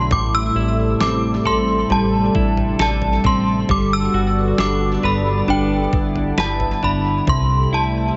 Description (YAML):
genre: dream pop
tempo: 67 BPM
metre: 4/4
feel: straight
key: A dorian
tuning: A4 = 440 Hz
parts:
  - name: synth chime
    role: melody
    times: 0.0-8.2 s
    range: G5 to E6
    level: -24 LUFS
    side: equal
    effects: ensemble chorus, tape echo
  - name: phased analog pad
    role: sustained chords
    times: 0.0-8.2 s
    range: C3 to A4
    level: -25 LUFS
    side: equal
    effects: phaser, chorus
  - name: semi-hollow electric guitar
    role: arpeggios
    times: 0.0-8.2 s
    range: A2 to B4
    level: -24 LUFS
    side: equal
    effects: subtle chorus, tape echo
  - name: chorused synth bass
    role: bass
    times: 0.0-8.1 s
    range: G1 to C2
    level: -25 LUFS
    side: equal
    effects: none
  - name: detuned 8-bit digital drum machine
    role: drums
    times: 0.1-7.5 s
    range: kick drum, snare drum, toms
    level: -26 LUFS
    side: equal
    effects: none
room: moderate plate reverb, RT60 3.5 s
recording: echo-heavy mix, nothing above 7.9 kHz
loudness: -18 LUFS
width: mono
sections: 0.0-8.2 A section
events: none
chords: 0.1 Am7; 3.7 Gmaj7; 7.3 C6